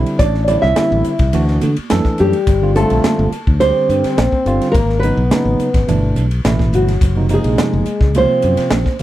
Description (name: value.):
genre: electric jazz fusion.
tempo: 106 BPM.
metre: 4/4.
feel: straight.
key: unclear.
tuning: A4 = 440 Hz.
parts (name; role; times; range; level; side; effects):
tine electric piano; accompaniment; 0.0-9.0 s; B2 to A4; -20 LUFS; right 2 dB; medium stereo tremolo.
modern bright fingered electric bass; bass; 0.0-8.9 s; F#1 to D3; -16 LUFS; equal; none.
crisp fusion drum kit; drums; 0.1-9.0 s; hi-hat, kick drum, ride cymbal, snare drum; -20 LUFS; equal; none.
nylon-string guitar; melody; 0.2-9.0 s; F#4 to E5; -18 LUFS; right 2 dB; none.
mellow trombone; second line; 0.2-9.0 s; F#3 to E4; -22 LUFS; left 5 dB; none.
congas; percussion; 0.2-9.0 s; none; -23 LUFS; right 4 dB; none.
room: light reverb.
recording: none.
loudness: -12 LUFS.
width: side -14 dB against mid.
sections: 0.0-9.0 A section.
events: none.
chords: 0.2 Am7; 1.3 D; 2.5 G7sus2; 4.7 G#m7; 5.9 G69; 7.0 F#69.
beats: | 0.20 0.77 1.34 1.91 | 2.47 3.04 3.61 4.18 | 4.75 5.31 5.88 6.45 | 7.02 7.58 8.15 8.72.